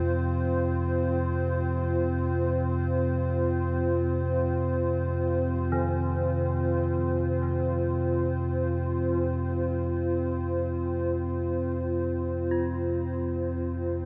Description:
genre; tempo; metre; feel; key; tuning
dark ambient drone; free time; none; none; unclear; A4 = 437 Hz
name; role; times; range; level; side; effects
dark analog pad; sustained chords; 0.0-14.1 s; C4 to C5; -30 LUFS; equal; chorus
deep rumbling drone; drone; 0.0-14.1 s; F2 to C3; -31 LUFS; equal; built-in reverb, subtle chorus
gamelan-type bronze metallophone; arpeggios; 5.7-14.1 s; Eb3 to F4; -41 LUFS; equal; analog delay
room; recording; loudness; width
wet huge ambient reverb, RT60 7.6 s; dreamy mix soaked in reverb; -28 LUFS; mono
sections
0.0-14.1 A section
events
fade-in on analog synth pad 0.0-14.1; fade-out on bronze metallophone 0.0-14.1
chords
0.0 F5

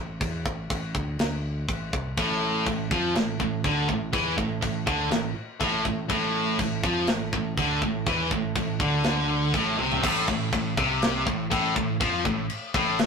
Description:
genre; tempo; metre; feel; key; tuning
heavy metal; 122 BPM; 4/4; straight; A minor; A4 = 439 Hz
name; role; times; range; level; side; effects
modern bright picked electric bass; bass; 0.0-13.1 s; A1 to F2; -32 LUFS; equal; none
tight metal drum kit; drums; 0.2-13.1 s; china cymbal, crash cymbal, kick drum, snare drum, toms; -29 LUFS; equal; none
scooped high-gain guitar; riff; 2.2-10.0 s; A2 to F3; -28 LUFS; right 5 dB; distortion
tight distorted guitar; riff; 2.2-13.1 s; A2 to F3; -28 LUFS; left 4 dB; distortion
heavy high-gain guitar; riff; 10.0-13.1 s; A2 to F3; -27 LUFS; equal; distortion
room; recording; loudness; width
moderate studio reverb, RT60 0.6 s; rough rehearsal-room recording, tube saturation; -23 LUFS; side -5 dB against mid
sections
0.0-10.0 A section; 10.0-13.1 B section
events
drum fill 9.8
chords
0.0 A5; 10.0 Am

